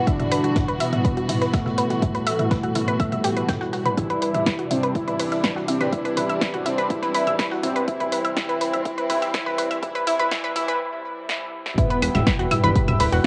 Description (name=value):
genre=melodic techno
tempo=123 BPM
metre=4/4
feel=straight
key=E minor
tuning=A4 = 442 Hz
part: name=dark studio string section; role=sustained chords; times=0.0-13.3 s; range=E2 to G5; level=-32 LUFS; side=equal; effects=sidechain pumping, cassette tape
part: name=brassy analog pad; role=stabs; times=0.0-13.3 s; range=B2 to E4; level=-35 LUFS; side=equal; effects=chorus, cassette tape, sidechain pumping, analog delay
part: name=analog synth brass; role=melody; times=0.1-13.3 s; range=G2 to E4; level=-29 LUFS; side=equal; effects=chorus, sidechain pumping, cassette tape, tape echo
part: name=analog pluck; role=arpeggios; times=0.1-13.3 s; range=E4 to E6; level=-28 LUFS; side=equal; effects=chorus, sidechain pumping, cassette tape, analog delay
part: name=breakbeat sampler-style drum kit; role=drums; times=0.1-13.3 s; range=hi-hat, snare drum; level=-41 LUFS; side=equal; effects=none
part: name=electronic kick drum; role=drums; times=0.1-13.3 s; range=none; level=-26 LUFS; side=equal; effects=cassette tape
part: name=techno drum kit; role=drums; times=0.1-13.3 s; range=claves, hi-hat, snare drum, toms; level=-30 LUFS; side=equal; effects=sidechain pumping on hats, cassette tape, sidechain pumping on toms, sidechain pumping on perc
part: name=fat analog bass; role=bass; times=12.0-13.2 s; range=D1 to E1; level=-25 LUFS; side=equal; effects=sidechain pumping
room=wet spring reverb, RT60 1.9 s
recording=home recording on cassette, high-pass filter, nothing above 10.6 kHz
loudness=-23 LUFS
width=mono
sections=0.0-11.8 A section; 11.8-13.3 B section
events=build-up 0.0-11.8; filter sweep on analog synth pad 0.0-11.8; filter sweep 0.0-11.8; break 10.8-11.8; drum fill 11.3-11.8; drop 11.8-13.3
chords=0.0 Em; 4.0 C/E; 11.8 Em